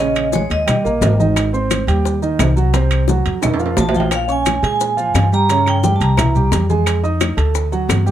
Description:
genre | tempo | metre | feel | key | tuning
Afro-Cuban jazz | 174 BPM | 4/4 | straight | unclear | A4 = 440 Hz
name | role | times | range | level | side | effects
vibraphone with medium hard mallets | melody | 0.0-1.2, 3.8-6.5 s | Db5 to Bb5 | -19 LUFS | right 1 dB | slapback echo
warm concert grand piano | accompaniment | 0.0-8.1 s | C3 to Eb6 | -20 LUFS | right 4 dB | none
upright bass | bass | 0.0-8.1 s | G1 to Bb2 | -17 LUFS | left 1 dB | none
congas | percussion | 0.0-8.1 s | none | -23 LUFS | left 1 dB | none
bongos | percussion | 0.2-8.1 s | none | -25 LUFS | left 7 dB | none
claves | percussion | 0.2-8.1 s | none | -28 LUFS | left 3 dB | none
maracas | percussion | 0.2-8.1 s | none | -30 LUFS | left 9 dB | none
timbales | percussion | 0.2-8.1 s | none | -23 LUFS | right 5 dB | none
room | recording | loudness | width
light reverb | none | -14 LUFS | side -11 dB against mid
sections
0.0-8.1 A section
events
drum fill 3.4-4.1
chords
0.0 Bbm7; 0.7 Eb; 1.4 Abmaj7; 2.7 Csus4; 3.4 Ebsus2; 4.1 Bbm7; 5.5 Bbm69; 6.2 C7; 6.9 Fm7; 7.6 D

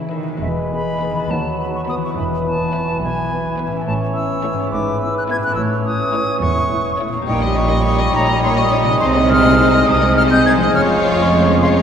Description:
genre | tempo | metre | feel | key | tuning
cinematic, playful, whimsical film cue | 70 BPM (dotted quarters) | 6/8 | straight | E major, Ab major from 7.3 s | A4 = 439 Hz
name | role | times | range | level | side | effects
concert harp | arpeggios | 0.0-11.8 s | G#2 to B5 | -25 LUFS | left 4 dB | none
rich chamber cello section | bass | 0.0-11.8 s | D#2 to D#3 | -21 LUFS | right 2 dB | none
rich chamber violin section | melody | 0.1-11.8 s | B4 to Eb5 | -25 LUFS | left 5 dB | none
rich chamber viola section | accompaniment | 0.1-11.8 s | G3 to G#4 | -29 LUFS | right 2 dB | none
bright concert flute | second line | 0.4-11.7 s | E5 to Ab6 | -21 LUFS | left 1 dB | none
mellow cor anglais | second line | 0.4-11.8 s | B4 to Eb5 | -24 LUFS | right 3 dB | none
warm bassoon | accompaniment | 0.4-11.8 s | E3 to G#3 | -23 LUFS | right 1 dB | none
rich chamber double bass section | bass | 0.4-11.8 s | E1 to D#2 | -23 LUFS | right 3 dB | none
dark French horn section | sustained chords | 0.7-11.8 s | G3 to G#4 | -26 LUFS | left 3 dB | none
warm studio violin section | second line | 1.0-11.8 s | C4 to G#4 | -28 LUFS | left 2 dB | none
room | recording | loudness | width
wet cathedral reverb, RT60 5.8 s | none | -14 LUFS | side -8 dB against mid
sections
0.4-11.8 A section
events
none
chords
0.4 E; 1.3 B/D#; 2.2 E; 3.9 A; 4.7 E/G#; 5.6 A; 7.3 Eb7/Bb; 9.0 Ab/C; 10.7 Db/F

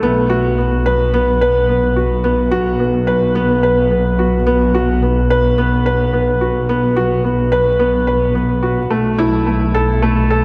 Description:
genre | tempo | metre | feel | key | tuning
piano and strings electronica | 108 BPM | 4/4 | straight | unclear | A4 = 437 Hz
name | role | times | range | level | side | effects
felt-muted upright piano | riff | 0.0-10.4 s | A3 to B4 | -17 LUFS | equal | analog delay
rich symphonic double bass section | bass | 0.0-10.4 s | B1 | -20 LUFS | equal | none
room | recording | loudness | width
wet lush hall reverb, RT60 2.6 s | dreamy mix soaked in reverb | -15 LUFS | mono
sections
0.0-10.4 A section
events
drop 0.0-10.4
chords
0.0 B5; 8.9 A5/B

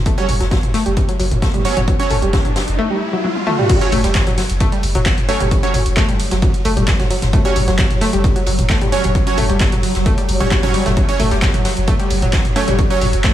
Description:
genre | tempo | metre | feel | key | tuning
driving peak-time techno | 132 BPM | 4/4 | straight | F# phrygian | A4 = 441 Hz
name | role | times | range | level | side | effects
warm sub bass | bass | 0.0-13.2 s | F#1 | -20 LUFS | equal | tube saturation, sidechain pumping, low-pass filter
analog pluck | riff | 0.1-13.3 s | F#3 to F#4 | -21 LUFS | left 1 dB | chorus, tube saturation, sidechain pumping, analog delay
electronic kick drum | drums | 0.1-13.3 s | none | -17 LUFS | equal | overdrive
open jazz drum kit | drums | 0.1-13.3 s | ride cymbal, snare drum | -29 LUFS | equal | high-pass filter on cymbals, high-pass filter on snare, high-pass filter on room, analog delay
punchy analog drum machine | drums | 0.1-13.3 s | crash cymbal, handclaps, hi-hat, ride cymbal, toms | -22 LUFS | equal | overdrive, sidechain pumping on toms, sidechain pumping on hats, sidechain pumping on cymbals
riser | sound effects | 1.3-3.7 s | none | -24 LUFS | equal | none
supersaw stab | stabs | 0.2-13.0 s | F#3 to C#5 | -22 LUFS | right 4 dB | sidechain pumping, analog delay
swarming drone | drone | 4.9-13.3 s | F#3 | -26 LUFS | equal | built-in reverb, sidechain pumping
room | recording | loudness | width
light reverb, digital ambience | echo-heavy mix, small room ambience | -14 LUFS | side -12 dB against mid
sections
0.0-3.7 A section; 3.7-13.3 B section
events
filter sweep on synth arpeggio sound 0.0-3.7; riser 1.3-3.7; drum fill 3.2-3.7; drop 3.7-13.3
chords
0.0 F#5

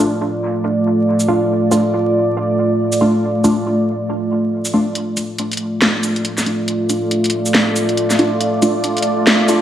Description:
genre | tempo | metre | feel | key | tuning
deep dubstep | 139 BPM | 4/4 | swing 60% on 16ths, half-time | D minor | A4 = 440 Hz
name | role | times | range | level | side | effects
deep dark ambient pad | sustained chords | 0.0-9.6 s | A3 to D5 | -16 LUFS | equal | chorus, built-in reverb
filtered dub chord stab | stabs | 0.0-9.6 s | A3 to F4 | -20 LUFS | right 1 dB | phaser, dub echo
garage drum kit | drums | 1.2-9.6 s | hi-hat, shaker, snare drum | -17 LUFS | equal | none
room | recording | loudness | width
wet plate reverb, RT60 1.6 s | dreamy mix soaked in reverb, vinyl crackle, high-pass filter | -14 LUFS | side -10 dB against mid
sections
0.0-5.0 A section; 5.0-9.6 B section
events
build-up 5.0-9.6; filter sweep on synth stab 5.0-9.6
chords
0.0 Dm

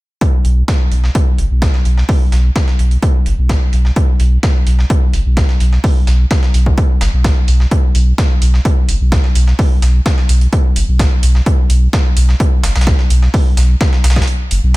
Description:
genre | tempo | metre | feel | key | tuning
acid house | 128 BPM | 4/4 | straight | unclear | A4 = 440 Hz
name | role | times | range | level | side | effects
dusty soul sampler-style drum kit | drums | 0.2-14.8 s | hi-hat, snare drum | -25 LUFS | right 1 dB | sidechain pumping on hats, high-pass filter on hats, high-pass filter on snare
electronic kick drum | drums | 0.2-14.3 s | none | -13 LUFS | equal | none
warm sub bass | bass | 0.4-14.8 s | F#1 to B1 | -11 LUFS | equal | sidechain pumping
electronic hi-hat | drums | 0.4-14.8 s | none | -26 LUFS | right 2 dB | low-pass filter on hats
room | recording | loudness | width
digital ambience | none | -10 LUFS | side -20 dB against mid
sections
0.2-14.8 A section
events
filter sweep on sub bass 0.2-14.8; break 14.3-14.8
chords
none

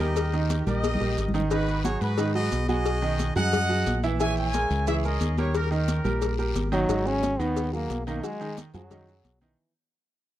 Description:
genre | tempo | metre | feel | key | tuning
latin, salsa | 178 BPM | 4/4 | straight | G# minor | A4 = 439 Hz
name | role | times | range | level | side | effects
bright trumpet section | melody | 0.0-6.4 s | C#4 to G#5 | -30 LUFS | equal | none
clear grand piano | accompaniment | 0.0-9.6 s | D#3 to E5 | -29 LUFS | right 3 dB | none
fingered electric bass | bass | 0.0-9.5 s | G#1 to G#2 | -28 LUFS | equal | none
maracas | percussion | 0.0-9.6 s | none | -44 LUFS | right 12 dB | none
congas | percussion | 0.2-9.6 s | none | -33 LUFS | left 1 dB | none
cowbell | percussion | 0.2-9.4 s | none | -33 LUFS | left 9 dB | none
guiro | percussion | 0.2-9.6 s | none | -44 LUFS | left 12 dB | none
clear trombone | melody | 6.7-9.7 s | E3 to C#4 | -28 LUFS | left 1 dB | none
room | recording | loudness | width
little or no reverb | dry, close 1970s-style studio recording | -23 LUFS | side -13 dB against mid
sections
0.0-6.9 A section; 6.9-9.6 B section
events
drum fill 0.8-1.5; fade-out 6.9-9.6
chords
0.2 D#; 1.5 G#m7; 2.9 B6; 4.2 A#m7b5; 5.5 D#7; 6.9 G#m7; 8.2 B6

